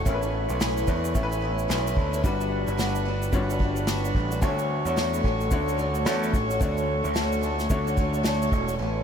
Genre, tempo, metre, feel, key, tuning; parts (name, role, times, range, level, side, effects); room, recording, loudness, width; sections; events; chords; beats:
acoustic pop; 110 BPM; 4/4; swing 60% on 16ths; D major; A4 = 440 Hz
clear upright piano; accompaniment; 0.0-8.8 s; G3 to C#5; -32 LUFS; left 4 dB
picked twelve-string acoustic guitar; accompaniment; 0.0-9.0 s; A2 to F#4; -28 LUFS; equal; double-tracked left and right
tonewheel organ; sustained chords; 0.0-8.8 s; G3 to C#6; -32 LUFS; right 2 dB; stopped rotary speaker
growling picked electric bass; bass; 0.0-9.0 s; E1 to E2; -28 LUFS; equal; overdrive
unplugged drum kit; drums; 0.1-8.8 s; kick drum, shaker, snare drum; -29 LUFS; equal
moderate huge ambient reverb, RT60 8.6 s; dreamy mix soaked in reverb; -23 LUFS; side -8 dB against mid
0.0-8.8 A section
0.1 Aadd9; 2.2 Gmaj7; 4.4 Dmaj7
| 0.06 0.61 1.15 1.70 | 2.24 2.79 3.33 3.88 | 4.42 4.97 5.51 6.06 | 6.61 7.15 7.70 8.25 | 8.79